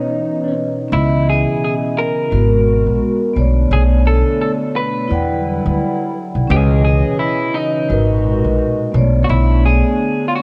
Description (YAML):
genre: lo-fi hip hop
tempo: 86 BPM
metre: 4/4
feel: swing 57% on 16ths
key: unclear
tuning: A4 = 439 Hz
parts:
  - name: electric guitar through a small old amp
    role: melody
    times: 0.0-10.4 s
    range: D#4 to B4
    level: -22 LUFS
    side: equal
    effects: spring reverb
  - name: vibraphone with soft mallets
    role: accompaniment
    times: 0.0-10.4 s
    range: G#3 to G5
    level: -23 LUFS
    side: equal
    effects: cassette tape
  - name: hollow soft pad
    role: sustained chords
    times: 0.0-10.4 s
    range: A#2 to D#5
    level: -25 LUFS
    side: equal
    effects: chorus
  - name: upright bass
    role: bass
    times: 0.9-9.8 s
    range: G#1 to E2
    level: -17 LUFS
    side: equal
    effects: none
room: small room ambience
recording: cassette tape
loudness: -16 LUFS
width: mono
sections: 0.9-10.4 A section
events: break 0.0-0.9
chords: 0.0 C#m9; 2.3 G#m9; 3.4 Bm9; 5.1 Em9; 6.5 C#m9; 7.9 G#m9; 8.9 Bm9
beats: 0.21 | 0.91 1.61 2.31 3.00 | 3.70 4.40 5.10 5.79 | 6.49 7.19 7.89 8.59 | 9.28 9.98